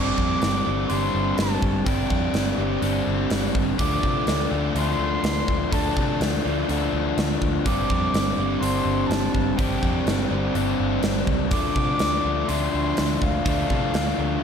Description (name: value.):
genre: rock, shoegaze and dream pop.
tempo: 124 BPM.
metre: 4/4.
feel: straight.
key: unclear.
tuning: A4 = 437 Hz.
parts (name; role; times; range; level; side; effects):
concert flute; melody; 0.0-14.4 s; F5 to D6; -29 LUFS; equal; slapback echo.
biting overdriven guitar; riff; 0.0-14.4 s; G2 to D4; -26 LUFS; left 12 dB; lush chorus.
crunchy overdriven guitar; riff; 0.0-14.4 s; D3 to D5; -27 LUFS; right 12 dB; reverse reverb.
vintage muted picked electric bass; bass; 0.0-14.4 s; G1 to C3; -27 LUFS; equal; none.
gated 80s drum kit; drums; 0.2-14.1 s; hi-hat, kick drum, snare drum; -26 LUFS; right 1 dB; none.
room: light reverb, small room ambience.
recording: none.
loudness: -20 LUFS.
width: side -7 dB against mid.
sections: 0.0-14.4 A section.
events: none.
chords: 0.0 Gsus4; 3.8 Dm7; 7.7 Gsus4; 11.5 Dm7.